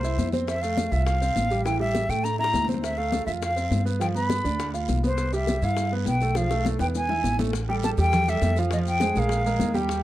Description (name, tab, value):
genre	Afro-Cuban jazz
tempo	204 BPM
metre	4/4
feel	straight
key	unclear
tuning	A4 = 440 Hz
part	breathy silver concert flute	melody	0.0-9.8 s	C5 to B5	-27 LUFS	equal	none
part	clear grand piano	accompaniment	0.0-10.0 s	E3 to G5	-29 LUFS	right 2 dB	none
part	upright bass	bass	0.0-10.0 s	A1 to A2	-26 LUFS	equal	none
part	bongos	percussion	0.0-10.0 s	none	-34 LUFS	left 6 dB	none
part	congas	percussion	0.0-10.0 s	none	-30 LUFS	left 2 dB	none
part	maracas	percussion	0.0-10.0 s	none	-43 LUFS	left 15 dB	none
part	guiro	percussion	0.2-10.0 s	none	-44 LUFS	right 15 dB	none
room	small room ambience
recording	dry, close 1970s-style studio recording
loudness	-22 LUFS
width	side -14 dB against mid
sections	0.0-7.5 A section; 7.5-10.0 B section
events	drum fill 2.2-2.8, 6.4-7.5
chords	0.5 Fadd9; 1.7 A5; 2.8 Dm7; 4.0 G7; 5.2 Cmaj7; 6.4 G13/B (rootless); 7.0 E; 7.5 A5; 8.7 Fm; 9.3 Bb5